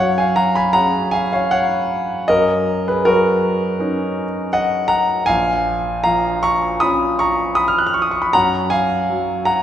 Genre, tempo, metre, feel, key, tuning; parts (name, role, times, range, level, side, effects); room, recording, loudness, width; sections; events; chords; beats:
classical, impressionist solo piano; 79 BPM; 4/4; rubato; F# major; A4 = 440 Hz
warm concert grand piano; solo; 0.0-9.6 s; A#1 to F#6; -15 LUFS; equal
wet concert hall reverb, RT60 1.9 s; recorded in a church or concert hall; -15 LUFS; side -10 dB against mid
0.0-9.6 A section
0.0 F#sus2; 2.3 D#m7/F#; 5.3 A#m7; 8.3 F#maj9
0.75 1.53 | 2.29 3.06 3.79 4.53 | 5.28 6.05 6.82 7.59 | 8.34 9.09